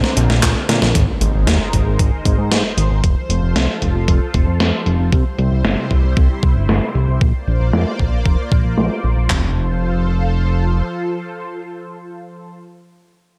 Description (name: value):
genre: synthwave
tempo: 115 BPM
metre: 4/4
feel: straight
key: F major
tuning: A4 = 439 Hz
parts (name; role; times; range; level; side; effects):
- clear electric grand piano; melody; 0.0-0.8 s; C5; -39 LUFS; equal; none
- analog string pad; sustained chords; 0.0-12.6 s; C3 to D5; -28 LUFS; equal; ensemble chorus, phaser, sidechain pumping
- soft round pluck; arpeggios; 0.0-9.5 s; D3 to F4; -31 LUFS; equal; none
- mellow FM electric piano; stabs; 0.0-0.9 s; Bb3 to D4; -30 LUFS; equal; none
- fat analog bass; bass; 0.0-10.8 s; F1 to Bb2; -19 LUFS; equal; none
- gated 80s digital drum machine; drums; 0.0-9.1 s; handclaps, hi-hat, snare drum; -22 LUFS; equal; gated reverb, gated reverb snare, low-pass filter on hats, low-pass filter on snare
- gated 80s digital drum machine; drums; 0.4-9.4 s; handclaps, kick drum, toms; -19 LUFS; equal; gated reverb
- impact; sound effects; 0.9-3.0 s; none; -30 LUFS; equal; none
room: digital ambience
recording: none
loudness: -17 LUFS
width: mono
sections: 0.9-9.3 A section; 9.3-13.4 B section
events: drum fill 0.0-0.9; impact 0.9-3.0; filter sweep on drum 0.9-9.3; filter sweep on analog synth bass 0.9-9.3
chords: 0.0 Bbadd9; 0.9 Abadd9; 3.0 F; 5.1 C; 7.2 Bbadd9; 9.3 F